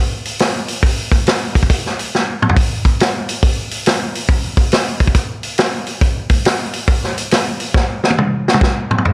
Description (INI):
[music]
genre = rock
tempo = 139 BPM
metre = 4/4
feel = swing 66% on 8ths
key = none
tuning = none
[part]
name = vintage drum kit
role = drums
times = 0.3-9.1 s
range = hi-hat, kick drum, snare drum, toms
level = -13 LUFS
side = equal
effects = none
[sound]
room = little or no reverb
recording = none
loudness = -13 LUFS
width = side -31 dB against mid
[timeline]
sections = 0.0-9.1 A section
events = drum fill 2.1-2.6, 7.7-9.1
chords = none